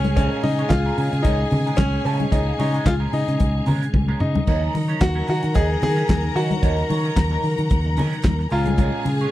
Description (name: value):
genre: disco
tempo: 111 BPM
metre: 4/4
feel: swing 56% on 16ths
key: Eb minor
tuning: A4 = 440 Hz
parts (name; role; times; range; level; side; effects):
- bright concert grand piano; melody; 0.0-9.3 s; Db4 to Ab4; -26 LUFS; left 2 dB; none
- dark studio string section; second line; 0.0-9.3 s; Ab4 to Bb5; -29 LUFS; left 2 dB; none
- tonewheel organ; sustained chords; 0.0-9.3 s; Bb2 to Eb4; -30 LUFS; right 2 dB; overdrive, chorus vibrato, slow rotary speaker
- fingered electric bass; bass; 0.0-9.2 s; Db2 to Eb3; -22 LUFS; equal; none
- damped 70s drum kit; drums; 0.0-9.3 s; crash cymbal, handclaps, hi-hat, kick drum, snare drum, toms; -20 LUFS; equal; none
- congas; percussion; 0.0-9.2 s; none; -27 LUFS; left 3 dB; none
- semi-hollow electric guitar; accompaniment; 0.1-9.3 s; Gb3 to Db5; -30 LUFS; right 6 dB; wah
room: studio ambience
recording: dry, close 1970s-style studio recording, lossy compression artefacts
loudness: -18 LUFS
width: side -14 dB against mid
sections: 0.0-9.3 A section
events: drum fill 3.9-4.5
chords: 0.0 Bbm7/Db; 4.5 Ebm7; 8.5 Bbm7/Db